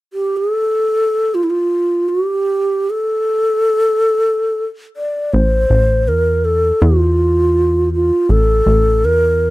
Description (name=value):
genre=Arabic maqam ensemble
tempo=free time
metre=none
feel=none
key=A maqam kurd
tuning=A4 = 440 Hz
part: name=breathy mellow low ney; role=melody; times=0.1-9.5 s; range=E4 to D5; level=-14 LUFS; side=equal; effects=none
part: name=plucky analog bass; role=bass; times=5.3-9.5 s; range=A1 to E2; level=-14 LUFS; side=equal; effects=none
room=small room ambience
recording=dry, close 1970s-style studio recording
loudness=-13 LUFS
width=side -18 dB against mid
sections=0.0-5.3 A section; 5.3-9.5 B section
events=none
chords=none